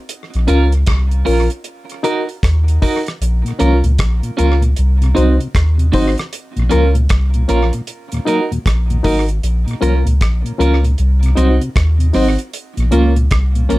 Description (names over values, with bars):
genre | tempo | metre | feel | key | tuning
roots reggae | 77 BPM | 4/4 | swing 62% on 16ths | Bb minor | A4 = 440 Hz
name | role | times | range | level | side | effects
damped 70s drum kit | drums | 0.1-13.8 s | hi-hat, kick drum, rim click | -20 LUFS | equal | tape echo
soft dub sub bass | bass | 0.3-13.8 s | Ab1 to Eb2 | -13 LUFS | equal | none
clean electric guitar | accompaniment | 0.5-13.8 s | Bb3 to Bb4 | -21 LUFS | right 5 dB | tremolo, dub echo
reed electric piano | stabs | 0.5-13.8 s | Db4 to C5 | -19 LUFS | left 4 dB | fast tremolo
mellow tonewheel organ | accompaniment | 3.4-13.8 s | Eb2 to Eb4 | -22 LUFS | left 2 dB | overdrive, chorus vibrato, slow rotary speaker
room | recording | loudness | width
light reverb | dark, warm production | -12 LUFS | side -18 dB against mid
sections
0.0-13.8 A section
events
none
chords
0.1 Bbm; 1.7 Ebm; 3.2 Bbm; 4.8 Cdim; 6.3 Bbm; 7.9 Ebm; 9.4 Bbm; 11.0 Cdim; 12.5 Bbm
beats
| 0.10 0.88 1.66 2.43 | 3.21 3.99 4.77 5.54 | 6.32 7.10 7.88 8.65 | 9.43 10.21 10.99 11.76 | 12.54 13.32